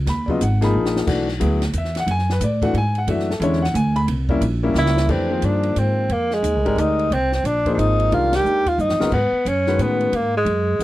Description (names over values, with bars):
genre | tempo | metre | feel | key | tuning
modal jazz | 179 BPM | 3/4 | swing 63% on 8ths | F dorian from 5.1 s | A4 = 440 Hz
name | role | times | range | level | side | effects
upright bass | bass | 0.0-10.8 s | Ab1 to A2 | -21 LUFS | right 1 dB | none
clear concert grand piano | accompaniment | 0.1-10.8 s | Db3 to Cb6 | -22 LUFS | left 3 dB | none
compact cocktail drum kit | drums | 0.1-10.8 s | crash cymbal, hi-hat, kick drum, ride cymbal, snare drum | -30 LUFS | equal | none
mellow tenor saxophone | melody | 4.8-10.8 s | Ab3 to G4 | -19 LUFS | equal | none
room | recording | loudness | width
light reverb | dry, close 1970s-style studio recording | -17 LUFS | side -16 dB against mid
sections
0.0-5.1 A section; 5.1-10.8 B section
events
drum fill 0.7-1.1, 4.8-5.1, 8.8-9.1; band accent 8.3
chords
0.0 Abm9; 1.1 Bm11; 4.1 C7b9; 5.1 Fm11; 9.1 Abm11